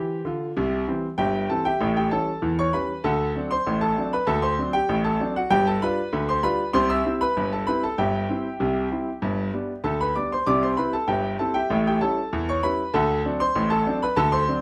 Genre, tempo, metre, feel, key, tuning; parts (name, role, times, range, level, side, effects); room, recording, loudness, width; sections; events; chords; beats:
ragtime piano; 97 BPM; 2/4; straight; C major; A4 = 439 Hz
warm grand piano; solo; 0.0-14.6 s; G1 to E6; -24 LUFS; equal
moderate studio reverb, RT60 0.6 s; -24 LUFS; mono
0.6-14.6 A section
0.0 C; 1.8 A7; 3.0 D7; 5.5 G7; 6.7 C; 8.0 C/G; 9.2 G; 11.7 A7; 12.9 D7
| 0.57 1.19 | 1.81 2.43 | 3.04 3.66 | 4.28 4.89 | 5.50 6.12 | 6.74 7.36 | 7.98 8.60 | 9.22 9.84 | 10.46 11.08 | 11.70 12.32 | 12.94 13.55 | 14.17